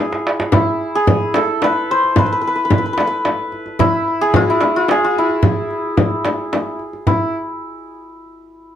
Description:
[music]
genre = Persian modal ensemble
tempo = 110 BPM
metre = 3/4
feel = straight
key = E dastgah homayun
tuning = A4 = 439 Hz
[part]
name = santur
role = melody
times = 0.0-7.9 s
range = E4 to C5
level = -17 LUFS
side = equal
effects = none
[part]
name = tombak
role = percussion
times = 0.1-7.3 s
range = none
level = -19 LUFS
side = right 2 dB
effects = none
[part]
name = frame drum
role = percussion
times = 0.5-7.3 s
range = none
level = -20 LUFS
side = left 4 dB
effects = none
[sound]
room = moderate studio reverb, RT60 0.6 s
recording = faint mains hum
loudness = -14 LUFS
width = side -10 dB against mid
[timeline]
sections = 0.0-7.1 A section; 7.1-8.7 B section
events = drum fill 0.0-0.5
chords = none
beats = | 0.52 1.07 1.61 | 2.16 2.70 3.25 | 3.79 4.34 4.89 | 5.43 5.98 6.52 | 7.07 7.61

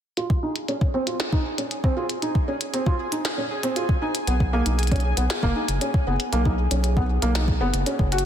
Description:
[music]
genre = IDM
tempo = 117 BPM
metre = 4/4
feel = straight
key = unclear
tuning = A4 = 440 Hz
[part]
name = felt-muted upright piano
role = arpeggios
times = 0.2-8.2 s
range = Bb3 to Gb4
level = -26 LUFS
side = right 1 dB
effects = low-pass filter, tape echo, shimmer reverb
[part]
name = glitchy drum kit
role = drums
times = 0.2-8.3 s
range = hi-hat, snare drum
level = -30 LUFS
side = left 1 dB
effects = low-pass filter on hats, low-pass filter on snare
[part]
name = pulsing gated texture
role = texture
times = 0.5-8.3 s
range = Ab4 to Ab5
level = -32 LUFS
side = left 1 dB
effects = chorus, built-in reverb, shimmer reverb
[part]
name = electronic kick drum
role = drums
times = 0.3-8.1 s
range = none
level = -22 LUFS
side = equal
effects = none
[part]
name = round analog bass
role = bass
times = 4.3-8.3 s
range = Gb1 to Cb2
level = -23 LUFS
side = equal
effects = none
[sound]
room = moderate echo chamber reverb, RT60 2.4 s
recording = dense, heavily limited modern master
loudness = -21 LUFS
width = side -9 dB against mid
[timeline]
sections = 0.2-8.3 A section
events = filter sweep on felt piano 0.2-8.3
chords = 0.2 N.C.; 4.3 Cb5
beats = | 0.17 0.69 1.20 1.71 | 2.22 2.74 3.25 3.76 | 4.28 4.79 5.30 5.81 | 6.33 6.84 7.35 7.87

